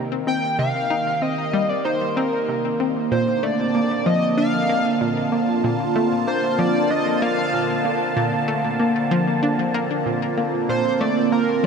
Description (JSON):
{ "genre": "ambient, sequencer-driven space music", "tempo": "95 BPM", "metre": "4/4", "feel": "straight", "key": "unclear", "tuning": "A4 = 440 Hz", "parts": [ { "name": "phased analog pad", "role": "sustained chords", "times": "0.0-11.7 s", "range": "D3 to A5", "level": "-22 LUFS", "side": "right 2 dB", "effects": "phaser, chorus" }, { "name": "analog pluck", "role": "riff", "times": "0.0-11.7 s", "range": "Bb2 to Eb4", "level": "-24 LUFS", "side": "left 1 dB", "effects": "chorus, ping-pong delay" }, { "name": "pulse-width lead", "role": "melody", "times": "0.3-11.7 s", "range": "Bb4 to G5", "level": "-24 LUFS", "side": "equal", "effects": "chorus, ping-pong delay" } ], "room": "wet huge ambient reverb, RT60 7.3 s", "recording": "none", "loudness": "-18 LUFS", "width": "side -6 dB against mid", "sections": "0.0-11.7 A section", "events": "none", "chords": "0.0 Cm7; 3.1 Bbmaj9", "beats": "| 0.59 1.22 1.85 2.48 | 3.11 3.75 4.38 5.01 | 5.64 6.27 6.90 7.54 | 8.17 8.80 9.43 10.06 | 10.69 11.32" }